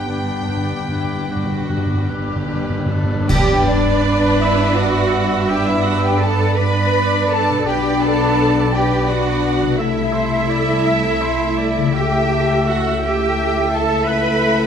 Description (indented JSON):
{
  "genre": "classical, slow romantic movement for symphony orchestra",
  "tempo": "48-61 BPM (dotted quarters)",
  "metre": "12/8",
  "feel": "rubato",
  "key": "G major",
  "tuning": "A4 = 442 Hz",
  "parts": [
    { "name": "warm symphonic violin section", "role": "melody", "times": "0.0-14.7 s", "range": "D5 to G5", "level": "-28 LUFS", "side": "left 3 dB", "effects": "none" },
    { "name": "clear oboe", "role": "second line", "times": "0.0-14.7 s", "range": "B4 to F#5", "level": "-28 LUFS", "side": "right 1 dB", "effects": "none" },
    { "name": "large flute ensemble", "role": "second line", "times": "0.0-14.7 s", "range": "D5 to D6", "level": "-26 LUFS", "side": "left 1 dB", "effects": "none" },
    { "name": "mellow clarinet", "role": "second line", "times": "0.0-3.3 s", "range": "D4", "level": "-29 LUFS", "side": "left 4 dB", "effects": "none" },
    { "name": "rich symphonic violin section", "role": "second line", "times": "0.0-14.7 s", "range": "D4 to B5", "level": "-28 LUFS", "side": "equal", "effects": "none" },
    { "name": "warm symphonic viola section", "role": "accompaniment", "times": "0.0-14.7 s", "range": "G3 to B4", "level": "-24 LUFS", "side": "right 1 dB", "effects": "none" },
    { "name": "warm French horn section", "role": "sustained chords", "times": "0.0-14.7 s", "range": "G3 to E4", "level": "-25 LUFS", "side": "left 5 dB", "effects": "none" },
    { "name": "concert harp", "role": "arpeggios", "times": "0.0-14.7 s", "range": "G2 to E5", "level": "-24 LUFS", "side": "left 11 dB", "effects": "none" },
    { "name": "rich symphonic cello section", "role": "bass", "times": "0.0-14.7 s", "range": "G2 to B4", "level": "-22 LUFS", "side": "right 3 dB", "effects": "none" },
    { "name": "warm symphonic double bass section", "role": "bass", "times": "0.0-14.7 s", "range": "G1 to G2", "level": "-23 LUFS", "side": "right 3 dB", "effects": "none" },
    { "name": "timpani", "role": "percussion", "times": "0.0-3.3 s", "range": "G2", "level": "-23 LUFS", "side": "left 1 dB", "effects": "none" },
    { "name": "mellow trumpet", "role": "stabs", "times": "3.3-14.7 s", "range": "B4 to E5", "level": "-26 LUFS", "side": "right 4 dB", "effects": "none" },
    { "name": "clash cymbals and concert bass drum", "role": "percussion", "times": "3.3-4.7 s", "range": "none", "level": "-25 LUFS", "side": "equal", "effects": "none" }
  ],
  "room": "moderate scoring stage reverb, RT60 1.5 s",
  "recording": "none",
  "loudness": "-15 LUFS",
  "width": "side -8 dB against mid",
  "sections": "0.0-3.3 A section; 3.3-14.7 B section",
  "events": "timpani fill 0.0-3.3; band accent 3.3-4.0",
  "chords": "0.0 G; 7.7 G/B; 9.8 Am/C; 11.9 A7/C#"
}